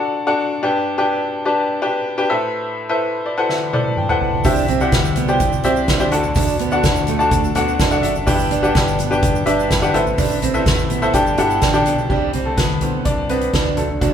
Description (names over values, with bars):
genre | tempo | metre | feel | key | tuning
piano-driven pop | 126 BPM | 4/4 | straight | G major | A4 = 440 Hz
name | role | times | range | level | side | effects
bright upright piano | accompaniment | 0.0-14.1 s | G2 to A5 | -18 LUFS | left 2 dB | none
soft-mallet drum kit | drums | 3.5-14.1 s | crash cymbal, hi-hat, kick drum, snare drum, toms | -19 LUFS | equal | none
fat analog bass | bass | 4.4-14.1 s | F#1 to D2 | -25 LUFS | right 1 dB | none
tube shaker | percussion | 4.4-12.1 s | none | -37 LUFS | right 8 dB | none
fingerpicked steel-string acoustic guitar | riff | 4.5-14.1 s | A3 to E4 | -23 LUFS | right 8 dB | none
room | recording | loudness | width
moderate stone room reverb, RT60 1.3 s | band playing live in one room | -15 LUFS | side -8 dB against mid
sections
0.0-12.1 A section; 12.1-14.1 B section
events
upright piano fill 3.0-4.4, 7.6-8.3; drum fill 3.5-4.4; upright piano solo 12.1-14.1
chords
0.0 D; 0.6 G; 2.3 Amadd9; 4.4 Cadd9; 6.1 D; 8.3 G; 9.9 Amadd9; 11.1 Gsus2; 12.1 Cadd9